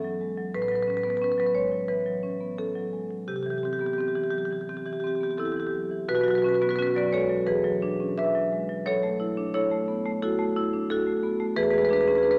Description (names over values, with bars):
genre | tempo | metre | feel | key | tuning
classical, contemporary piece for solo marimba | 88 BPM | 4/4 | rubato | unclear | A4 = 439 Hz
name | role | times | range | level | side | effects
marimba with medium hard mallets | solo | 0.0-12.4 s | G2 to E5 | -26 LUFS | equal | none
room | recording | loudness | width
wet concert hall reverb, RT60 2.2 s | none | -27 LUFS | mono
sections
0.0-6.1 A section; 6.1-12.4 A section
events
none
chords
0.0 F#m/G; 0.5 A69; 3.3 Cmaj7; 6.1 Bsus2; 7.5 E9; 8.9 F#m7; 11.6 E13